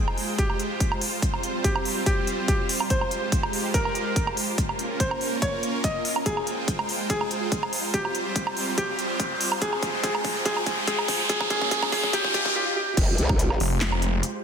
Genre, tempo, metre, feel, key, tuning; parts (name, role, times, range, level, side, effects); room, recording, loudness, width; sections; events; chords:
heavy wobble dubstep; 143 BPM; 4/4; swing 53% on 16ths, half-time; F minor; A4 = 440 Hz
clear grand piano; melody; 0.0-13.0 s; G4 to Eb5; -29 LUFS; equal; vintage 12-bit sampler grit, dub echo
supersaw pad; sustained chords; 0.0-14.4 s; G3 to G5; -30 LUFS; right 2 dB; sidechain pumping, low-pass filter
big-room dance drum kit; drums; 0.1-14.3 s; crash cymbal, handclaps, hi-hat, snare drum, woodblock; -29 LUFS; right 2 dB
electronic kick drum; drums; 0.4-13.4 s; -27 LUFS; equal
riser and swell; sound effects; 7.8-13.0 s; -29 LUFS; equal
growl bass; bass; 13.0-13.6 s; F1 to C2; -24 LUFS; equal; chorus, overdrive
snarling distorted saw bass; bass; 13.6-14.2 s; F1; -24 LUFS; equal; distortion, overdrive
light reverb; dense, heavily limited modern master, high-pass filter; -22 LUFS; side -7 dB against mid
0.0-13.0 A section; 13.0-14.4 B section
build-up 0.0-13.0; filter sweep 0.0-13.0; drum fill 6.3-12.6; riser 7.8-12.6; swell 12.1-13.0; drop 13.0-14.4
0.0 Fmadd9; 1.2 Csus4; 2.9 Fmadd9; 4.6 Bbm; 6.3 Fmadd9; 7.9 Csus4; 9.6 Fmadd9; 11.3 Bbm; 12.1 Eb; 13.0 Fmadd9